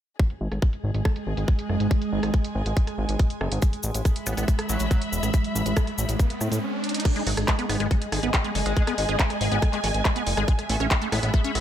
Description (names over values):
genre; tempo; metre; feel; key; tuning
psychedelic trance; 140 BPM; 4/4; straight; G# phrygian; A4 = 440 Hz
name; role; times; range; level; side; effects
evolving wavetable pad; sustained chords; 0.9-11.6 s; G#3; -32 LUFS; right 3 dB; chorus, built-in reverb, sidechain pumping
drum and bass drum kit; drums; 0.2-11.6 s; crash cymbal, handclaps, hi-hat, rim click; -30 LUFS; equal; low-pass filter on hats, studio reverb, low-pass filter on snare, low-pass filter on cymbals
electronic kick drum; drums; 0.2-11.4 s; none; -22 LUFS; equal; studio reverb
dark studio string section; texture; 0.2-11.6 s; G#4 to B5; -33 LUFS; left 2 dB; sidechain pumping
fat analog bass; bass; 0.4-11.6 s; E1 to A2; -26 LUFS; equal; none
cabasa; percussion; 3.6-6.6 s; none; -33 LUFS; left 3 dB; none
riser; sound effects; 5.1-7.1 s; none; -34 LUFS; equal; none
metallic wobble bass; second line; 4.3-5.0, 7.7-11.6 s; F#3 to B3; -36 LUFS; right 2 dB; chorus, sidechain pumping, high-pass filter, digital delay
liquid acid bass; riff; 7.2-11.5 s; F#3 to C#4; -30 LUFS; moving between left 5 dB and right 5 dB; chorus, auto-pan, sidechain pumping, tape echo
room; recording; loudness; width
light reverb, digital ambience; none; -22 LUFS; side -10 dB against mid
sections
0.2-7.1 A section; 7.1-11.6 B section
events
fade-in on string section 0.2-7.1; filter sweep on drum 0.2-7.1; riser 5.1-7.1; break 6.6-7.1; drum fill 6.8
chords
0.2 G#5; 3.6 A5; 7.1 G#5; 10.5 A5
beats
| 0.20 0.62 1.05 1.48 | 1.91 2.34 2.77 3.19 | 3.62 4.05 4.48 4.91 | 5.34 5.77 6.20 6.62 | 7.05 7.48 7.91 8.34 | 8.77 9.20 9.62 10.05 | 10.48 10.91 11.34